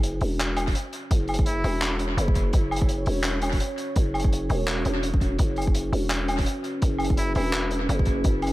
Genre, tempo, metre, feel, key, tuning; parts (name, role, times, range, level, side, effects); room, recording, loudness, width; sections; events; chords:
half-time drum and bass; 168 BPM; 4/4; swing 57% on 16ths, half-time; A4 = 438 Hz
dark analog pad; sustained chords; 0.2-8.5 s; C#4 to C#5; -32 LUFS; right 1 dB; chorus, sidechain pumping
growling 808-style bass; bass; 0.0-8.5 s; E1 to F#1; -26 LUFS; equal
crunchy breakbeat drum kit; drums; 0.0-8.5 s; handclaps, hi-hat, woodblock; -30 LUFS; equal; analog delay
electronic kick drum; drums; 0.7-8.3 s; -23 LUFS; equal
trumpet with straight mute; melody; 1.5-2.0, 7.2-7.7 s; E4; -34 LUFS; equal; dub echo
small room reverb; echo-heavy mix; -22 LUFS; side -18 dB against mid
0.0-8.5 A section
0.0 F#5